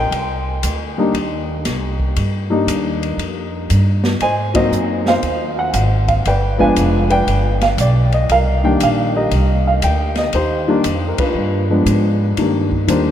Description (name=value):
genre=jazz piano trio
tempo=117 BPM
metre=4/4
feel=swing 67% on 8ths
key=C minor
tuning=A4 = 438 Hz
part: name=dark baby grand piano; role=melody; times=0.0-13.1 s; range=Eb3 to Ab5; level=-17 LUFS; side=equal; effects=none
part: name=upright bass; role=bass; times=0.0-13.1 s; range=F1 to Ab2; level=-18 LUFS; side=equal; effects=none
part: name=open jazz drum kit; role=drums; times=0.1-13.0 s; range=hi-hat, kick drum, ride cymbal, snare drum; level=-25 LUFS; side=left 2 dB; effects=none
room=wet cathedral reverb, RT60 5.8 s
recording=in a vast, echoing space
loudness=-14 LUFS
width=side -10 dB against mid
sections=0.0-12.4 A section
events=band accent 4.5, 11.1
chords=0.1 Cm7; 4.2 Ab7; 6.3 G7b9; 8.3 Cm7; 11.4 G7b9; 12.4 Cm7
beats=| 0.12 0.63 1.14 1.65 | 2.16 2.67 3.18 3.70 | 4.21 4.72 5.23 5.74 | 6.25 6.76 7.27 7.79 | 8.30 8.81 9.32 9.83 | 10.34 10.85 11.36 11.87 | 12.38 12.89